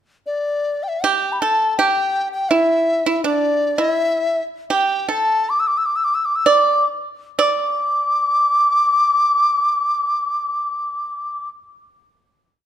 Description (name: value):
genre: chinese traditional, Chinese chamber ensemble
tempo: 56-82 BPM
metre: 2/4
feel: straight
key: unclear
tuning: A4 = 439 Hz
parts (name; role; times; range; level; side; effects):
- reedy large dizi; melody; 0.3-11.5 s; D5 to E6; -17 LUFS; left 1 dB; none
- pipa; second line; 1.0-11.5 s; D4 to D5; -19 LUFS; right 5 dB; none
room: moderate recital hall reverb, RT60 1.4 s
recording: none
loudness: -16 LUFS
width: side -10 dB against mid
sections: 0.0-1.0 pickup bar; 1.0-7.4 A section; 7.4-11.6 final note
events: slowing down 4.0-7.4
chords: none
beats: 0.28 | 1.02 1.77 | 2.51 3.24 | 3.97 4.72 | 5.51 6.38 | 7.38 8.45 | 9.51 10.56